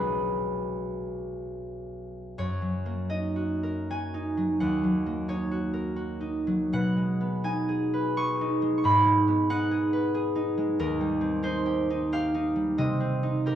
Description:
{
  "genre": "classical, solo harp piece",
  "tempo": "69-94 BPM",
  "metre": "3/4",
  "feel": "rubato",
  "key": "F# major",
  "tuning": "A4 = 440 Hz",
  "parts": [
    { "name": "concert harp", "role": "solo", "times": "0.0-13.6 s", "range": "B1 to C#6", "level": "-25 LUFS", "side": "right 1 dB", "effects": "none" }
  ],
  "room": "moderate recital hall reverb, RT60 1.5 s",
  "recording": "dark, warm production",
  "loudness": "-25 LUFS",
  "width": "side -10 dB against mid",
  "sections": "0.0-2.4 A section; 2.4-13.6 B section",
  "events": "none",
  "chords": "0.0 Bm6; 2.4 F#6; 4.6 D#m7; 6.7 B6; 8.8 G#m7; 10.8 Eb6; 12.8 Cm7"
}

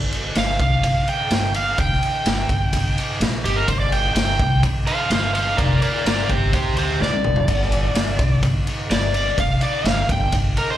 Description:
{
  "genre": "blues rock power trio and southern rock",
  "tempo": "126 BPM",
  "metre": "4/4",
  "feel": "straight",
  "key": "G minor",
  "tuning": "A4 = 440 Hz",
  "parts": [
    { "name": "upright bass", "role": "bass", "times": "0.0-10.6 s", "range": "F1 to D2", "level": "-23 LUFS", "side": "equal", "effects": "none" },
    { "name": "raw garage drum kit", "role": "drums", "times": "0.1-10.7 s", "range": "crash cymbal, kick drum, ride cymbal, snare drum, toms", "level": "-21 LUFS", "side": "equal", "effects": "none" },
    { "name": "overdriven slide guitar", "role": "melody", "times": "0.4-10.8 s", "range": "G4 to G5", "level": "-22 LUFS", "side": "right 1 dB", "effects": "slapback echo, analog delay" }
  ],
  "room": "studio reverb",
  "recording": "live gig heard through the venue's PA, club reverb",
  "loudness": "-17 LUFS",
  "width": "side -12 dB against mid",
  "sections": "0.0-10.8 A section",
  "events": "electric slide guitar solo 0.0-10.8; drum fill 7.0-7.5",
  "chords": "0.0 G5"
}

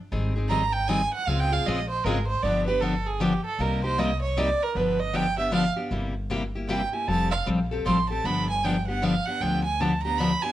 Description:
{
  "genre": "acoustic string swing (jazz manouche)",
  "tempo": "155 BPM",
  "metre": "3/4",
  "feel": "swing 63% on 8ths",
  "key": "unclear",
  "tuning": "A4 = 440 Hz",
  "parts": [
    { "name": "picked steel-string acoustic guitar", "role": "accompaniment", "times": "0.1-10.5 s", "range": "C3 to A4", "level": "-27 LUFS", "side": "left 2 dB", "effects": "none" },
    { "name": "upright bass", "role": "bass", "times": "0.1-10.3 s", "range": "F1 to D2", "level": "-30 LUFS", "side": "equal", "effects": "none" },
    { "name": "warm violin", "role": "second line", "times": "0.5-10.5 s", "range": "G4 to C6", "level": "-26 LUFS", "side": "right 4 dB", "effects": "none" }
  ],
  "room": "moderate studio reverb, RT60 0.8 s",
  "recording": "worn, warbling old tape, cassette tape, warbly pitch drift",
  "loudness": "-23 LUFS",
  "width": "side -13 dB against mid",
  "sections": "0.0-4.8 A section; 4.8-10.5 A section",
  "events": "violin solo 0.0-10.5",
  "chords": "0.1 Abmaj7; 1.3 Dbmaj7; 2.4 G7; 3.6 Cm7; 4.8 G7; 5.9 C7/G; 7.1 Fadd9; 8.2 G7"
}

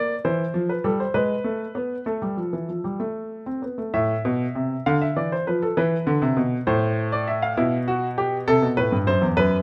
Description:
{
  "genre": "classical, baroque-style two-part invention for grand piano",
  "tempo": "66 BPM (dotted quarters)",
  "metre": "6/8",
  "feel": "straight",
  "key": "A minor",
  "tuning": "A4 = 441 Hz",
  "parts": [
    { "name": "warm baby grand piano", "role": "solo", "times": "0.0-9.6 s", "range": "E2 to F5", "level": "-23 LUFS", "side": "equal", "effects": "none" }
  ],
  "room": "moderate recital hall reverb, RT60 1.4 s",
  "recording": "none",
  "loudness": "-23 LUFS",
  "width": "mono",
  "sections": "0.0-3.9 A section; 3.9-9.6 B section",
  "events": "none",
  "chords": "0.3 Am/E; 1.2 G#m; 2.1 N.C.; 3.9 Am; 4.9 Bdim/D; 5.8 E5; 6.7 Am; 7.6 Em/B; 8.5 F#dim"
}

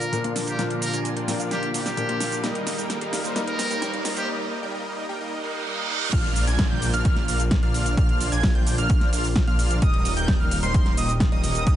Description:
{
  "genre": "EDM, festival progressive house",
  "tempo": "130 BPM",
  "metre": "4/4",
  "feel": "straight",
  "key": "unclear",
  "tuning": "A4 = 440 Hz",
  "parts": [
    { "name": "trumpet with metal mute", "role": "melody", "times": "0.0-4.3 s", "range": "G4 to Bb4", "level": "-31 LUFS", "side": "equal", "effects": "dub echo" },
    { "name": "clear baby grand piano", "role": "accompaniment", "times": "0.0-6.2 s", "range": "Bb2 to Bb4", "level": "-31 LUFS", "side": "left 3 dB", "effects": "sidechain pumping" },
    { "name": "lush unison pad", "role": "sustained chords", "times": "0.0-11.8 s", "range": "Bb2 to C5", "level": "-35 LUFS", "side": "equal", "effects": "chorus, sidechain pumping" },
    { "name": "dense compressed supersaw", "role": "riff", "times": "0.0-11.8 s", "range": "G3 to Ab5", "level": "-30 LUFS", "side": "right 1 dB", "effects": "sidechain pumping, low-pass filter, dub echo" },
    { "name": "pop drum kit", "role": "drums", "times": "0.0-11.8 s", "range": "cabasa, crash cymbal, hi-hat, snare drum", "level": "-29 LUFS", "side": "right 1 dB", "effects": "overdrive, high-pass filter on snare, high-pass filter on hats, high-pass filter on perc, high-pass filter on cymbals, high-pass filter on room" },
    { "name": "riser, reverse cymbal and downlifter", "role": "sound effects", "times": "1.6-9.8 s", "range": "none", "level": "-33 LUFS", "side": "right 3 dB", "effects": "none" },
    { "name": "wide unison lead", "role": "arpeggios", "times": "6.1-11.8 s", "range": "C6 to Ab6", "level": "-29 LUFS", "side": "right 1 dB", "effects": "wide subtle chorus, sidechain pumping, dub echo" },
    { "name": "wide detuned saw bass", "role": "bass", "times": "6.1-11.8 s", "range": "Eb1 to Bb1", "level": "-26 LUFS", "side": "equal", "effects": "chorus, sidechain pumping" },
    { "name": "electronic kick drum", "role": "drums", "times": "6.1-11.8 s", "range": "none", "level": "-22 LUFS", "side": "equal", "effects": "overdrive" }
  ],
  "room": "light reverb",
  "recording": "high-pass filter, nothing above 10.7 kHz",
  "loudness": "-21 LUFS",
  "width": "side -12 dB against mid",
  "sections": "0.0-6.1 A section; 6.1-11.8 B section",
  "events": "build-up 0.0-6.1; drum fill 0.0-4.3; filter sweep on supersaw synth 0.0-6.1; filter sweep 0.0-6.1; break 4.3-6.1; reverse cymbal 5.4-6.1; drop 6.1-11.8",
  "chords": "0.0 Bb; 2.4 Eb; 6.1 Bb; 9.8 Eb"
}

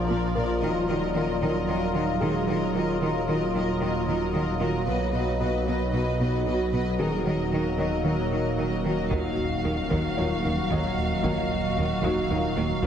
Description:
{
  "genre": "cinematic, hybrid orchestral and electronic film score",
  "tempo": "113 BPM",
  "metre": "4/4",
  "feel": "straight",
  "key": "Eb minor",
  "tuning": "A4 = 440 Hz",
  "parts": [
    { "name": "warm symphonic violin section", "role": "second line", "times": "0.0-12.9 s", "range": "Gb4 to Eb5", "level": "-33 LUFS", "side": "left 2 dB", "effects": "none" },
    { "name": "warm symphonic viola section", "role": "accompaniment", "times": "0.0-12.9 s", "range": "F3 to F#4", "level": "-31 LUFS", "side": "equal", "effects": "none" },
    { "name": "overtone-sweeping drone", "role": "sustained chords", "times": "0.0-12.9 s", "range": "F3 to F5", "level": "-29 LUFS", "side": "right 1 dB", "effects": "chorus, built-in reverb, phaser" },
    { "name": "dark detuned saw bass", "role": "bass", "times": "0.0-12.9 s", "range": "Eb1 to B1", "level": "-31 LUFS", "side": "left 1 dB", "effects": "none" },
    { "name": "felt-muted upright piano", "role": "texture", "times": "0.0-12.9 s", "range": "Ab3 to Eb5", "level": "-38 LUFS", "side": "left 1 dB", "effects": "none" },
    { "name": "rich symphonic cello section", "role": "bass", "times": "0.1-12.9 s", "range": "Bb2 to Eb3", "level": "-30 LUFS", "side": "right 1 dB", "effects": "none" },
    { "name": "warm symphonic violin section", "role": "melody", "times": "9.1-12.9 s", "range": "F5", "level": "-33 LUFS", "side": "left 2 dB", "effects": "none" },
    { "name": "mellow French horn section", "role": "sustained chords", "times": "9.1-12.5 s", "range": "Bb3 to F4", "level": "-37 LUFS", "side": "left 4 dB", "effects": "none" },
    { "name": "warm trombone section", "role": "sustained chords", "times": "9.1-12.5 s", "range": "Eb3 to Gb3", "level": "-38 LUFS", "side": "right 1 dB", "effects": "none" },
    { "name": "round analog bass", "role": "riff", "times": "9.1-12.9 s", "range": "Eb2", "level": "-34 LUFS", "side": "right 1 dB", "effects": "none" },
    { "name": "rich chamber double bass section", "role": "bass", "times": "9.1-12.9 s", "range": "Eb2", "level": "-33 LUFS", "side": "right 2 dB", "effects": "none" },
    { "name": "taiko ensemble", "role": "drums", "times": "9.1-12.9 s", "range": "none", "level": "-36 LUFS", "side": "equal", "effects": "none" }
  ],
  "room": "wet scoring stage reverb, RT60 1.7 s",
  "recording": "heavily compressed radio sound, multiband compression",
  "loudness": "-23 LUFS",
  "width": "side -8 dB against mid",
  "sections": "0.0-9.1 A section; 9.1-12.9 B section",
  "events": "none",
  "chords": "0.0 Bb; 0.6 Ebmadd9; 4.9 B; 7.0 Ebm; 9.1 Ebmadd9"
}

